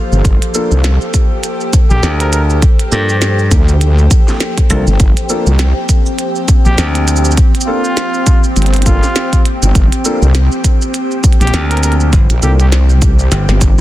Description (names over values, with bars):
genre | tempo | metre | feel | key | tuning
glitch hop | 101 BPM | 4/4 | swing 58% on 16ths | G minor | A4 = 441 Hz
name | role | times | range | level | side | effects
warbly tape-like pad | sustained chords | 0.0-13.8 s | F3 to A4 | -21 LUFS | equal | chorus, built-in reverb, sidechain pumping
airy breathy pad | texture | 0.0-13.8 s | G4 to G5 | -23 LUFS | left 1 dB | chorus, sidechain pumping
wobble bass | bass | 0.1-13.8 s | G1 to D2 | -10 LUFS | equal | chorus
glitchy drum kit | drums | 0.1-13.8 s | hi-hat, shaker, snare drum, toms | -19 LUFS | right 2 dB | soft clipping on snare
electronic kick drum | drums | 0.2-13.8 s | none | -10 LUFS | equal | none
dark grand piano | stabs | 0.5-12.5 s | Bb3 to A4 | -22 LUFS | left 1 dB | vintage 12-bit sampler grit, sidechain pumping, tape echo
warm trumpet | melody | 1.9-12.7 s | F4 to Bb4 | -23 LUFS | equal | tape echo
slap bass | bass | 2.0-7.4, 11.5-13.5 s | G1 to G2 | -12 LUFS | equal | tube saturation
room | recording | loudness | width
digital ambience | dense, heavily limited modern master | -9 LUFS | side -15 dB against mid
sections
0.0-13.8 A section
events
drum fill 13.3-13.8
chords
0.0 Gm9